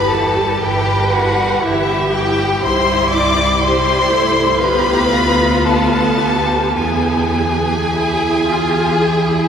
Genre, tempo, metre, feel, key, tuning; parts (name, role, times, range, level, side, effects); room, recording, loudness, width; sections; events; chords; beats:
classical, slow romantic movement for string orchestra; 52-61 BPM; 4/4; rubato; A4 = 441 Hz
rich chamber violin section; melody; 0.0-9.5 s; E5 to D6; -18 LUFS; left 3 dB
rich chamber violin section; second line; 0.0-9.5 s; E4 to D5; -19 LUFS; left 1 dB
rich chamber viola section; accompaniment; 0.0-9.5 s; E3 to G4; -20 LUFS; right 1 dB
rich chamber double bass section; bass; 0.0-9.5 s; G1 to E2; -21 LUFS; right 2 dB
warm chamber cello section; bass; 0.0-9.5 s; E4 to B4; -21 LUFS; right 2 dB
wet cathedral reverb, RT60 6.2 s; recorded in a church or concert hall; -13 LUFS; side -8 dB against mid
0.0-9.5 A section
0.0 Em/G; 2.6 C; 4.6 Bdim/D; 6.8 E
0.63 1.64 | 2.63 3.63 4.63 5.67 | 6.79 7.92 9.03